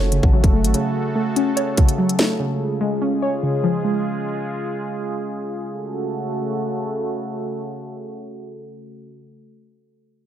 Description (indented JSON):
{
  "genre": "hip hop, drill",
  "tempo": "145 BPM",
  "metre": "4/4",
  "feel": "half-time",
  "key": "F# harmonic minor",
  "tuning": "A4 = 440 Hz",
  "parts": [
    { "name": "warbly dusty pluck", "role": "accompaniment", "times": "0.0-4.9 s", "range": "C#3 to C#5", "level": "-21 LUFS", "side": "left 1 dB", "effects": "chorus, low-pass filter" },
    { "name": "sweeping resonant pad", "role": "sustained chords", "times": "0.0-9.2 s", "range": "C#3 to A4", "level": "-26 LUFS", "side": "right 1 dB", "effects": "chorus, low-pass filter" },
    { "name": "long sustained 808-style bass", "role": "bass", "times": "0.0-0.7 s", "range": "F#1 to A1", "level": "-19 LUFS", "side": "equal", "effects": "none" },
    { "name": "drill drum kit", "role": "drums", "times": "0.1-2.3 s", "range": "hi-hat, kick drum, snare drum", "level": "-17 LUFS", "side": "equal", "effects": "none" }
  ],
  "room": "light reverb, digital ambience",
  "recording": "none",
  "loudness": "-19 LUFS",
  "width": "side -10 dB against mid",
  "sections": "0.0-5.7 A section; 5.7-9.0 B section",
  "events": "filter sweep 0.0-5.7",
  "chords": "0.0 F#m; 2.4 C#; 5.7 F#m"
}